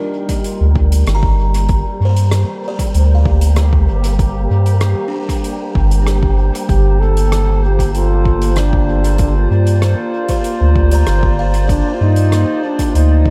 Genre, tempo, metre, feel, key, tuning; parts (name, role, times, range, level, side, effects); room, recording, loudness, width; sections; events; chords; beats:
ambient dub; 96 BPM; 4/4; straight; G minor; A4 = 440 Hz
mellow trombone; melody; 0.0-0.4, 6.7-13.3 s; D4 to A4; -24 LUFS; equal; tape echo
warbly tape-like pad; sustained chords; 0.0-13.3 s; G3 to D5; -26 LUFS; equal; chorus, built-in reverb
buzzing kalimba; arpeggios; 0.0-13.3 s; D4 to Bb5; -30 LUFS; equal; tape echo
wind-like tuned noise texture; texture; 0.0-13.3 s; Bb3 to G4; -29 LUFS; equal; built-in reverb
electronic kick drum; drums; 0.3-13.3 s; -20 LUFS; equal
soft-mallet drum kit; drums; 0.3-13.1 s; hi-hat, rim click; -30 LUFS; equal; dub echo
soft dub sub bass; bass; 0.6-13.3 s; G1 to G2; -15 LUFS; equal
light reverb, studio reverb; -14 LUFS; mono
0.0-13.3 A section
0.0 Gm7
0.44 1.07 | 1.69 2.32 2.94 3.57 | 4.19 4.82 5.44 6.07 | 6.69 7.32 7.94 8.57 | 9.19 9.82 10.44 11.07 | 11.69 12.32 12.94